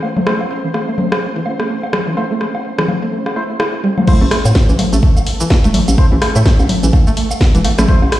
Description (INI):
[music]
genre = minimal techno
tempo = 126 BPM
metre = 4/4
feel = swing 59% on 16ths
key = A minor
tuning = A4 = 444 Hz
[part]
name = string-like resonator pluck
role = riff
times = 0.0-7.9 s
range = E3 to E4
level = -20 LUFS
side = right 1 dB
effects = chorus, cassette tape, sidechain pumping, digital delay
[part]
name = electronic woodblock, congas and rim click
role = percussion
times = 0.0-8.2 s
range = none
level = -19 LUFS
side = left 1 dB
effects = tape echo
[part]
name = flickering grainy texture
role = texture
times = 0.0-8.2 s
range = A3 to C5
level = -26 LUFS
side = right 1 dB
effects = built-in reverb, sidechain pumping
[part]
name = percussive organ stab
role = stabs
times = 0.3-8.0 s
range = A3 to C5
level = -25 LUFS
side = equal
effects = analog chorus, tape echo
[part]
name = electronic kick drum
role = drums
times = 4.1-8.0 s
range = none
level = -12 LUFS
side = equal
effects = none
[part]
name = garage drum kit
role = drums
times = 4.1-8.2 s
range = cabasa, crash cymbal, hi-hat, snare drum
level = -21 LUFS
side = equal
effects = none
[part]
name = hollow knocking FM bass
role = bass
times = 4.2-8.1 s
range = E1 to A2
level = -14 LUFS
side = equal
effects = sidechain pumping
[sound]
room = light reverb, digital ambience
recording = played on a big sound system in a bare room, stone room reverb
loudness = -12 LUFS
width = side -14 dB against mid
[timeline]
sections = 0.0-4.1 A section; 4.1-8.2 B section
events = drop 4.1-8.2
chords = 0.0 Am